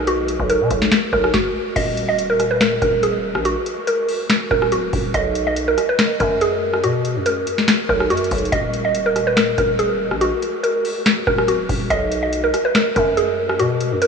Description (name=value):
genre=hip hop, trap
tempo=142 BPM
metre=4/4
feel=half-time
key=Eb harmonic minor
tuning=A4 = 439 Hz
part: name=growling 808-style bass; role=bass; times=0.0-14.1 s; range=D1 to B2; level=-24 LUFS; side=equal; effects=none
part: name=mallet-like synth pluck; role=melody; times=0.1-14.1 s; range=F#4 to Eb5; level=-18 LUFS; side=right 1 dB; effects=chorus, low-pass filter, tape echo
part: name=booming analog drum machine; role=drums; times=0.1-14.1 s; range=crash cymbal, finger snaps, hi-hat, kick drum, rim click, snare drum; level=-22 LUFS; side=left 2 dB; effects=none
room=wet huge ambient reverb, RT60 8.4 s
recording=dreamy mix soaked in reverb, cassette tape, studio ambience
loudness=-16 LUFS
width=side -5 dB against mid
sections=0.0-1.8 A section; 1.8-14.1 B section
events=stop 1.3-1.8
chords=0.0 Bmaj7(no3); 1.8 Eb5; 5.1 B5; 8.5 Eb5; 11.9 B5